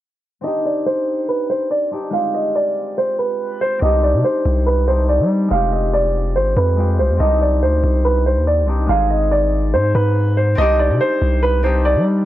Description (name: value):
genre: hip hop, drill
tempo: 142 BPM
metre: 4/4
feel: half-time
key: C harmonic minor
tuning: A4 = 439 Hz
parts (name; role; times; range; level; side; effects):
- dark grand piano; melody; 0.4-12.0 s; B4 to F5; -18 LUFS; right 2 dB; low-pass filter
- concert harp; accompaniment; 0.4-12.2 s; Ab3 to Ab4; -24 LUFS; left 3 dB; low-pass filter
- long sustained 808-style bass; bass; 3.8-12.2 s; F1 to G3; -17 LUFS; equal; none
room: little or no reverb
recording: dry, gritty hardware recording, low-pass filter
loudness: -15 LUFS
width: side -13 dB against mid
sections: 0.4-3.8 A section; 3.8-12.2 B section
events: filter sweep 0.4-3.8, 3.8-10.6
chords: 0.4 Cmadd9; 2.1 Fmadd9; 3.8 Cmadd9; 5.5 Fmadd9; 7.2 Cmadd9; 8.9 Ab; 10.6 Cmadd9